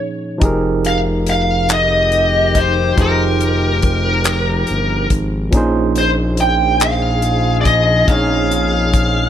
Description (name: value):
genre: slow six-eight R&B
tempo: 47 BPM (dotted quarters)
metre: 6/8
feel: straight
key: F minor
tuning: A4 = 440 Hz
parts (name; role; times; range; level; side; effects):
- barky tine electric piano; accompaniment; 0.0-9.3 s; Bb2 to Db5; -20 LUFS; right 3 dB; overdrive, auto-pan
- smooth synth bass; bass; 0.4-9.3 s; F1 to Bb1; -19 LUFS; left 1 dB; none
- damped 70s drum kit; drums; 0.4-9.1 s; handclaps, hi-hat, kick drum; -17 LUFS; left 1 dB; none
- smooth overdriven lead guitar; melody; 0.9-9.3 s; Bb4 to G5; -17 LUFS; equal; slapback echo
- clear horn section; stabs; 1.7-9.3 s; Eb3 to Ab4; -24 LUFS; left 8 dB; none
room: light reverb, small room ambience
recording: none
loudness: -13 LUFS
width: side -10 dB against mid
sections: 0.0-9.3 A section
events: none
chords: 0.4 Fm11; 5.5 Bbm11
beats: | 0.42 1.70 | 2.97 4.25 | 5.53 6.80 | 8.08